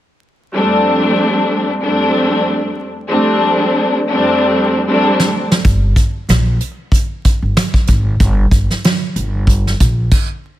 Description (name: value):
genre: hip hop, boom-bap hip-hop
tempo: 94 BPM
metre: 4/4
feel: swing 56% on 16ths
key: unclear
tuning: A4 = 440 Hz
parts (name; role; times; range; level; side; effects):
- warm studio string section; accompaniment; 0.5-5.5 s; F2 to D4; -12 LUFS; left 1 dB; high-pass filter, low-pass filter
- soft brush drum kit; drums; 5.2-10.3 s; crash cymbal, hi-hat, kick drum, snare drum; -13 LUFS; equal; none
- upright bass; bass; 5.6-10.1 s; G1 to Bb1; -15 LUFS; equal; none
room: light reverb, small room ambience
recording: vinyl crackle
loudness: -12 LUFS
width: side -14 dB against mid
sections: 0.5-10.6 A section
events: drum fill 5.0-5.6; stop 10.1-10.6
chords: 0.5 F6; 5.6 Gm